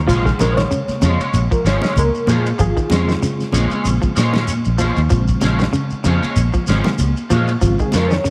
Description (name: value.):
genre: afrobeat.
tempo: 96 BPM.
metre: 4/4.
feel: swing 56% on 16ths.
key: Bb minor.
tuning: A4 = 439 Hz.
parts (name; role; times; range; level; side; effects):
reed electric piano; accompaniment; 0.0-8.3 s; C3 to Db5; -24 LUFS; equal; fast tremolo.
fingered electric bass; bass; 0.0-8.2 s; Ab1 to Bb2; -20 LUFS; equal; none.
clean electric guitar; arpeggios; 0.1-8.3 s; Db3 to F3; -27 LUFS; equal; none.
electric guitar at the edge of break-up; stabs; 0.1-8.1 s; F3 to Db4; -26 LUFS; equal; ensemble chorus.
warm soul drum kit; drums; 0.1-8.3 s; crash cymbal, kick drum, ride cymbal, snare drum; -25 LUFS; equal; none.
shekere; percussion; 0.1-8.3 s; none; -28 LUFS; equal; none.
congas; percussion; 0.4-8.1 s; none; -29 LUFS; equal; none.
room: light reverb, studio reverb.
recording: none.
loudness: -17 LUFS.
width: mono.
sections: 0.1-8.3 A section.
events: reed electric piano solo 0.1-8.3.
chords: 0.1 Bbm7.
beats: | 0.08 0.71 1.34 1.96 | 2.59 3.22 3.85 4.48 | 5.11 5.74 6.36 6.99 | 7.62 8.24.